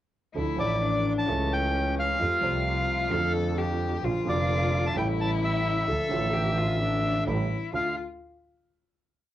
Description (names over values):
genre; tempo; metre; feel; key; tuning
tango; 130 BPM; 4/4; rubato; D minor; A4 = 439 Hz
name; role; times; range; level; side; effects
rich cello; second line; 0.4-7.9 s; C#4 to A4; -31 LUFS; left 6 dB; cassette tape
warm concert grand piano; accompaniment; 0.4-7.9 s; F1 to A4; -31 LUFS; right 5 dB; cassette tape
rich double bass; bass; 0.4-7.9 s; F1 to F2; -30 LUFS; right 1 dB; none
bandoneon; melody; 0.6-8.0 s; D5 to A5; -28 LUFS; equal; cassette tape
room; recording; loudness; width
moderate studio reverb, RT60 0.6 s; home recording on cassette; -24 LUFS; side -13 dB against mid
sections
0.4-7.7 A section; 7.7-9.3 final chord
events
none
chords
0.4 Dm; 1.3 A/C#; 2.2 Fadd9; 3.1 Dm/F; 4.0 Bb; 5.0 A7; 5.9 Dm; 7.3 A7; 7.7 Dm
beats
| 0.35 0.82 1.28 1.74 | 2.20 2.66 3.12 3.58 | 4.04 4.50 4.96 5.42 | 5.88 6.34 6.80 7.27 | 7.73